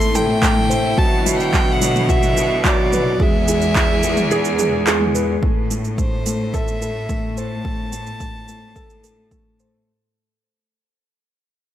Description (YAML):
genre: piano and strings electronica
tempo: 108 BPM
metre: 4/4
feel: straight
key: A dorian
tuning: A4 = 440 Hz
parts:
  - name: warm violin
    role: melody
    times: 0.0-9.6 s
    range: C5 to C6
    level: -24 LUFS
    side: equal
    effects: tape echo
  - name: dark chamber string section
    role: sustained chords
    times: 0.0-5.4 s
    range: C3 to G#4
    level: -25 LUFS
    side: equal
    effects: sidechain pumping
  - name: felt-muted upright piano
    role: riff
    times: 0.0-9.9 s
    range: F#3 to C5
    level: -21 LUFS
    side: left 1 dB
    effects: tape echo
  - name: bright symphonic cello section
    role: bass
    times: 0.0-9.8 s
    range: E2 to B2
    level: -24 LUFS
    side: right 1 dB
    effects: sidechain pumping
  - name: deep house drum kit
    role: drums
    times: 0.0-9.7 s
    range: handclaps, shaker, toms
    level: -23 LUFS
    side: right 2 dB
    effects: overdrive
  - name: electronic kick drum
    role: drums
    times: 0.4-9.4 s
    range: none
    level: -21 LUFS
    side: equal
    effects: overdrive
room: moderate recital hall reverb, RT60 1.6 s, studio ambience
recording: none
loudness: -15 LUFS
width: side -11 dB against mid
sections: 0.0-5.4 A section; 5.4-9.9 B section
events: drop 0.0-5.4; kick drops out 4.3-5.4; fade-out 5.4-9.9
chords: 0.0 Am; 1.0 Bm; 3.2 E; 5.4 Am